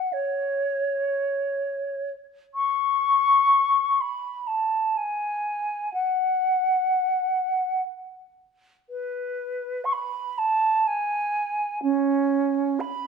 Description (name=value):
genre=classical, free, expressive piece for unaccompanied flute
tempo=free time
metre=none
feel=none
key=F# minor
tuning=A4 = 440 Hz
part: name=mellow silver concert flute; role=solo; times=0.0-13.1 s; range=C#4 to C#6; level=-22 LUFS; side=equal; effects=none
room=moderate recital hall reverb, RT60 1.5 s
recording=none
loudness=-22 LUFS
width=side -6 dB against mid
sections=0.0-13.1 A section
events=none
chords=none